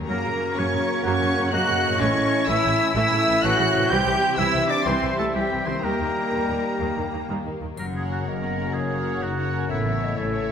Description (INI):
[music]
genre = cinematic, heroic adventure film score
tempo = 125 BPM (dotted quarters)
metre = 12/8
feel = straight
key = unclear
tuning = A4 = 441 Hz
[part]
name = warm symphonic violin section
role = second line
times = 0.0-10.5 s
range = G3 to C#5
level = -34 LUFS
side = left 4 dB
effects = none
[part]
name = warm symphonic viola section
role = accompaniment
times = 0.0-10.5 s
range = C3 to A#4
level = -32 LUFS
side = right 1 dB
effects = none
[part]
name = concert harp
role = arpeggios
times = 0.0-10.5 s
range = F#2 to C#5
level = -33 LUFS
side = left 8 dB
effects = none
[part]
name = warm studio double bass section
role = bass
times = 0.0-10.5 s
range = F#1 to F#2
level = -30 LUFS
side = right 3 dB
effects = none
[part]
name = rich studio violin section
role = melody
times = 0.1-10.5 s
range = E5 to G6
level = -29 LUFS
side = left 3 dB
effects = none
[part]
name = clear oboe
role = second line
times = 0.1-10.5 s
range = E4 to G5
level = -28 LUFS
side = right 1 dB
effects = none
[part]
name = concert flute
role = second line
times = 0.1-10.5 s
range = G4 to G5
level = -31 LUFS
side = left 1 dB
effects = none
[part]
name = bright trombone section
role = sustained chords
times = 0.1-10.5 s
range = C#3 to A#3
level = -34 LUFS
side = right 3 dB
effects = none
[part]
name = warm French horn section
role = sustained chords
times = 0.1-10.5 s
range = A#3 to G4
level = -31 LUFS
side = left 4 dB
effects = none
[part]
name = rich symphonic cello section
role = bass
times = 0.1-10.5 s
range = F#2 to G4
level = -28 LUFS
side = right 3 dB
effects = none
[part]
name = mellow clarinet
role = second line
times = 1.0-10.5 s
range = A3 to G5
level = -32 LUFS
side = left 1 dB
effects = none
[part]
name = triangle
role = percussion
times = 7.8-8.4 s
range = none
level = -51 LUFS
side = left 2 dB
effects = none
[sound]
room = wet scoring stage reverb, RT60 1.8 s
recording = none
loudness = -20 LUFS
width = side -7 dB against mid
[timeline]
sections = 0.0-7.8 A section; 7.8-10.5 B section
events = none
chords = 0.1 F#; 2.0 A; 3.9 C; 5.8 D#; 7.8 F#; 9.7 A